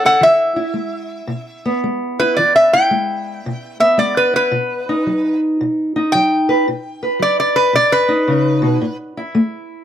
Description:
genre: acoustic country blues, solo or duo.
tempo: 112 BPM.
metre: 4/4.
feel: swing 65% on 8ths.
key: unclear.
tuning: A4 = 440 Hz.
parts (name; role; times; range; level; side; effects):
lap resonator guitar; melody; 0.0-9.0 s; A4 to G5; -14 LUFS; equal; none.
fingerpicked steel-string acoustic guitar; accompaniment; 0.0-9.8 s; A2 to B4; -19 LUFS; equal; none.
room: light reverb.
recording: close, detailed microphones.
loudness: -14 LUFS.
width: side -10 dB against mid.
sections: 0.0-9.8 A section.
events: resonator guitar played with a steel bar solo 0.0-9.8.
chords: 0.2 E; 4.5 B; 8.8 A5.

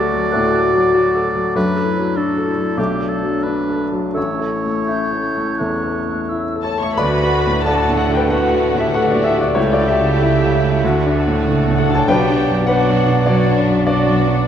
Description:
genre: classical, romantic movement for piano and orchestra.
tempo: 81-101 BPM.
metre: 4/4.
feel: rubato.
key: D major.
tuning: A4 = 439 Hz.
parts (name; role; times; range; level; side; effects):
clear baby grand piano; melody; 0.0-14.5 s; A1 to C#6; -18 LUFS; left 2 dB; none.
bright clarinet; second line; 0.0-14.3 s; C#4 to D5; -26 LUFS; equal; none.
warm oboe; second line; 0.0-14.5 s; G4 to G5; -25 LUFS; right 3 dB; none.
mellow French horn section; sustained chords; 0.0-13.5 s; F#3 to G4; -25 LUFS; left 2 dB; none.
concert flute; second line; 0.3-14.5 s; C#5 to G6; -28 LUFS; equal; none.
mellow bassoon; accompaniment; 0.3-14.5 s; F#3 to A3; -26 LUFS; right 1 dB; none.
dark studio violin section; melody; 6.6-14.5 s; C#5 to C#6; -26 LUFS; left 4 dB; none.
rich studio viola section; accompaniment; 6.6-14.5 s; C#4 to C#5; -27 LUFS; equal; none.
rich studio violin section; second line; 7.0-14.5 s; A3 to G4; -27 LUFS; right 1 dB; none.
warm studio cello section; bass; 7.0-14.5 s; B2 to D3; -23 LUFS; right 6 dB; none.
warm studio double bass section; bass; 7.0-14.5 s; B1 to D2; -22 LUFS; right 4 dB; none.
room: moderate scoring stage reverb, RT60 1.7 s.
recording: none.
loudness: -14 LUFS.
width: side -9 dB against mid.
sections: 0.0-7.0 A section; 7.0-14.5 B section.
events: none.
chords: 0.0 D; 1.5 D/F#; 4.2 A; 7.0 D; 9.6 A7/C#; 10.8 D; 12.1 Bm.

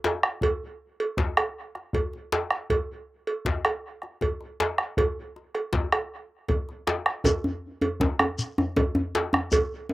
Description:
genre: west african traditional, West African drum ensemble.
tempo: 106 BPM (dotted quarters).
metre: 12/8.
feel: straight.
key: none.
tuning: none.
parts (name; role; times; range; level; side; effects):
djembe; percussion; 0.0-9.7 s; none; -30 LUFS; left 4 dB; none.
cowbell; percussion; 0.1-9.7 s; none; -28 LUFS; right 3 dB; none.
bombo; percussion; 0.2-9.7 s; none; -26 LUFS; equal; none.
djembe; percussion; 7.2-9.9 s; none; -27 LUFS; left 1 dB; none.
shekere; percussion; 7.3-9.7 s; none; -29 LUFS; left 2 dB; none.
room: light reverb.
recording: recorded outdoors, with no room sound.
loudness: -24 LUFS.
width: side -17 dB against mid.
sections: 0.0-7.3 A section; 7.3-9.9 B section.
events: none.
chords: none.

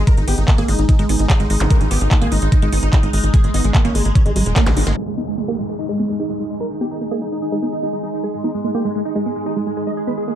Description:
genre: psychedelic trance.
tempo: 147 BPM.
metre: 4/4.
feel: straight.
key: unclear.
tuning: A4 = 440 Hz.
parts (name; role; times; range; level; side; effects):
dense compressed supersaw; melody; 0.0-10.3 s; G#3 to D#5; -24 LUFS; right 1 dB; phaser, sidechain pumping, ping-pong delay.
overtone-sweeping drone; sustained chords; 0.0-10.4 s; G#3 to D#4; -28 LUFS; right 2 dB; chorus, built-in reverb, sidechain pumping.
tight sequencer bass; bass; 0.0-4.9 s; D#1 to A#1; -18 LUFS; equal; none.
woody wave-folded pluck; riff; 0.1-10.4 s; G3 to G#4; -25 LUFS; moving between left 1 dB and right 5 dB; chorus, auto-pan, sidechain pumping, tape echo.
drum and bass drum kit; drums; 0.1-5.0 s; handclaps, hi-hat, snare drum; -25 LUFS; equal; none.
electronic kick drum; drums; 0.1-4.6 s; none; -14 LUFS; equal; none.
zap and downlifter; sound effects; 1.6-1.7, 4.7-8.2 s; none; -30 LUFS; equal; none.
granular cloud pad; texture; 5.6-10.4 s; D#4 to G#5; -29 LUFS; equal; built-in reverb, sidechain pumping.
room: light reverb, digital ambience.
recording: dark, warm production, low-pass filter.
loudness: -15 LUFS.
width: side -11 dB against mid.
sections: 0.0-5.0 A section; 5.0-10.4 B section.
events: drum fill 4.6-5.0; band accent 4.9; filter sweep on synth arpeggio sound 5.0-10.4; filter sweep 5.0-10.4.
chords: 0.0 G#5.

